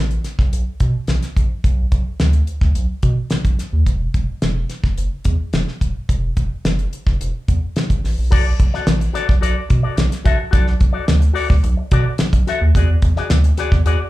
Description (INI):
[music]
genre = funk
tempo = 108 BPM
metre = 4/4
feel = straight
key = B dorian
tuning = A4 = 440 Hz
[part]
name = round analog bass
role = bass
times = 0.0-14.0 s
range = D#1 to B2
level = -17 LUFS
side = equal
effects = none
[part]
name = damped 70s drum kit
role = drums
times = 0.1-14.0 s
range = crash cymbal, hi-hat, kick drum, snare drum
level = -18 LUFS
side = equal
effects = none
[part]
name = electric guitar with an envelope filter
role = accompaniment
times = 8.3-14.0 s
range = F#4 to E5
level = -24 LUFS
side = left 6 dB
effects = slapback echo
[sound]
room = light reverb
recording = live gig heard through the venue's PA, club reverb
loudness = -15 LUFS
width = side -17 dB against mid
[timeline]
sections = 0.0-8.3 A section; 8.3-14.1 B section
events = none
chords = 0.0 N.C.; 3.9 Esus2; 8.3 Bm7; 12.8 E9